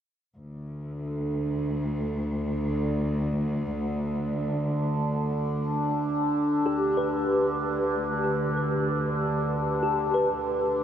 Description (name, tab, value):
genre	ambient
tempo	free time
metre	none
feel	none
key	unclear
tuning	A4 = 440 Hz
part	overtone-sweeping drone	drone	1.0-10.8 s	D3 to D4	-28 LUFS	equal	chorus, built-in reverb, phaser
part	rich studio cello section	bass	0.4-10.8 s	D2	-31 LUFS	equal	none
part	mellow tine electric piano	arpeggios	6.7-10.8 s	G4 to B4	-27 LUFS	equal	ensemble chorus, diffuse ambient delay
room	wet huge ambient reverb, RT60 8.8 s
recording	none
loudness	-25 LUFS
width	side -9 dB against mid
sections	0.4-10.8 A section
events	fade-out on cello section 0.4-10.8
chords	0.4 N.C.; 6.7 G/D